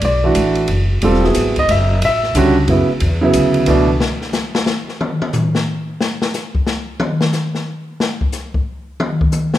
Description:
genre	jazz piano trio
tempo	180 BPM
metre	3/4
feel	swing 63% on 8ths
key	A mixolydian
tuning	A4 = 440 Hz
part	warm concert grand piano	melody	0.0-3.9 s	B2 to E5	-14 LUFS	right 1 dB	none
part	upright bass	bass	0.0-4.0 s	E1 to F#2	-17 LUFS	equal	none
part	open jazz drum kit	drums	0.0-9.6 s	hi-hat, kick drum, ride cymbal, snare drum, toms	-19 LUFS	left 2 dB	none
room	moderate recital hall reverb, RT60 1.7 s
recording	recorded in a church or concert hall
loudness	-14 LUFS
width	side -13 dB against mid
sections	0.0-4.0 A section; 4.0-9.6 A section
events	grand piano solo 0.0-4.0; drum solo 4.0-9.6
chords	0.0 Bm7; 1.0 Eadd9; 2.0 A69; 4.0 N.C.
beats	| 0.02 0.35 0.69 | 1.02 1.35 1.68 | 2.02 2.35 2.68 | 3.01 3.34 3.68 | 4.01 4.34 4.67 | 5.01 5.34 5.67 | 6.01 6.34 6.67 | 7.01 7.34 7.67 | 8.01 8.34 8.67 | 9.01 9.34

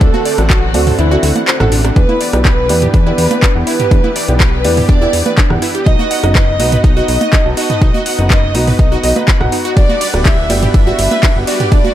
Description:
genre	progressive house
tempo	123 BPM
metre	4/4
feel	straight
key	E minor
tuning	A4 = 440 Hz
part	warm velvety synth lead	melody	0.0-11.9 s	E4 to E5	-19 LUFS	right 1 dB	chorus, tremolo, sidechain pumping, ping-pong delay
part	dark chamber violin section	second line	0.0-11.9 s	E4 to E5	-24 LUFS	right 1 dB	sidechain pumping, ping-pong delay
part	supersaw pad	sustained chords	0.0-11.9 s	D3 to F#5	-25 LUFS	equal	sidechain pumping
part	wide unison pluck	arpeggios	0.0-11.9 s	D4 to B5	-21 LUFS	right 1 dB	sidechain pumping, ping-pong delay
part	felt-muted upright piano	stabs	0.0-11.8 s	B3 to A5	-20 LUFS	right 2 dB	sidechain pumping, ping-pong delay
part	fat analog bass	bass	0.0-11.8 s	D1 to E2	-16 LUFS	equal	sidechain pumping
part	deep house drum kit	drums	0.0-11.8 s	handclaps, hi-hat, ride cymbal	-18 LUFS	left 1 dB	overdrive, sidechain pumping on hats, sidechain pumping on cymbals
part	electronic kick drum	drums	0.0-11.8 s	none	-11 LUFS	equal	overdrive
part	punchy analog drum machine	percussion	0.1-11.9 s	congas, rim click, toms	-20 LUFS	right 3 dB	overdrive, sidechain pumping on perc, sidechain pumping on snare, sidechain pumping on toms
room	digital ambience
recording	none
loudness	-9 LUFS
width	side -12 dB against mid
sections	0.0-11.9 A section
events	kick drops out 1.0-2.0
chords	0.0 D7; 2.0 Em7; 5.9 B; 9.8 Gmaj7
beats	| 0.01 0.50 0.99 1.47 | 1.96 2.45 2.94 3.42 | 3.91 4.40 4.89 5.38 | 5.86 6.35 6.84 7.33 | 7.82 8.30 8.79 9.28 | 9.77 10.26 10.74 11.23 | 11.72

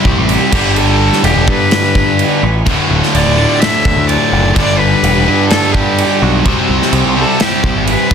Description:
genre	quiet-loud alternative rock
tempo	127 BPM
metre	4/4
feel	straight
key	unclear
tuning	A4 = 440 Hz
part	clear cello	melody	0.0-8.1 s	F#4 to E5	-17 LUFS	left 1 dB	digital delay
part	distorted electric guitar	riff	0.0-8.1 s	D2 to C4	-18 LUFS	right 11 dB	overdrive
part	distorted electric guitar	riff	0.0-8.1 s	D2 to C4	-18 LUFS	left 1 dB	overdrive
part	sludgy distorted guitar	riff	0.0-8.1 s	D2 to C4	-18 LUFS	left 13 dB	overdrive
part	growling picked electric bass	bass	0.1-8.1 s	D1 to G2	-15 LUFS	equal	overdrive
part	loose indie drum kit	drums	0.1-8.1 s	crash cymbal, kick drum, snare drum	-16 LUFS	right 1 dB	none
room	light reverb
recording	dense, heavily limited modern master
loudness	-9 LUFS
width	side -7 dB against mid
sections	0.0-8.1 A section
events	none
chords	0.0 C5; 0.5 G; 2.7 Dsus2; 4.6 G; 6.5 C5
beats	0.29 | 0.77 1.24 1.72 2.19 | 2.67 3.14 3.61 4.09 | 4.56 5.04 5.51 5.98 | 6.46 6.93 7.40 7.88

